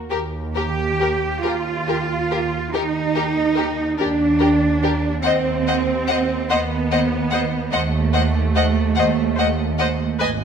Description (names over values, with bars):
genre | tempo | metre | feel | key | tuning
classical, slow romantic movement for string orchestra | 44-50 BPM (dotted quarters) | 12/8 | rubato | Eb major | A4 = 440 Hz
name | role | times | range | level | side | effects
warm symphonic violin section | melody | 0.1-10.3 s | Bb4 to Ab5 | -27 LUFS | left 6 dB | none
warm symphonic violin section | second line | 0.1-10.3 s | G4 to Eb5 | -26 LUFS | left 5 dB | none
warm symphonic viola section | accompaniment | 0.1-10.3 s | G4 to C5 | -30 LUFS | equal | none
rich symphonic double bass section | bass | 0.1-10.4 s | Ab1 to Eb2 | -23 LUFS | right 4 dB | none
rich symphonic cello section | bass | 0.5-10.2 s | A3 to G4 | -21 LUFS | right 3 dB | none
room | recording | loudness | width
moderate scoring stage reverb, RT60 1.5 s | none | -17 LUFS | side -7 dB against mid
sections
0.1-10.4 A section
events
none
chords
0.1 Eb; 5.2 Ebdim7(no3)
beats
| 0.11 1.44 2.73 3.99 | 5.24 6.50 7.72 8.97 | 10.20